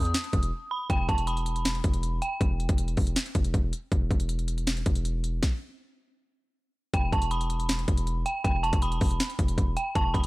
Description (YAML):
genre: hip hop, trap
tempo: 159 BPM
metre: 4/4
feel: half-time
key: E harmonic minor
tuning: A4 = 443 Hz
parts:
  - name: dark detuned synth bell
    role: melody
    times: 0.0-2.4, 6.9-10.3 s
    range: G5 to D#6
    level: -31 LUFS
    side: right 2 dB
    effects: chorus, low-pass filter, tape echo
  - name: distorted 808-style bass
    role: bass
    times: 0.0-10.3 s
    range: E1 to E2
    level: -29 LUFS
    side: equal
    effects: distortion
  - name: trap drum kit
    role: drums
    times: 0.0-10.3 s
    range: hi-hat, kick drum, snare drum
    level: -27 LUFS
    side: equal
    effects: none
room: little or no reverb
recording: none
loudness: -25 LUFS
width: side -21 dB against mid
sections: 0.0-6.9 A section; 6.9-10.3 B section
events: break 0.5-0.9; stop 5.4-6.9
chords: 0.0 N.C.; 6.9 E5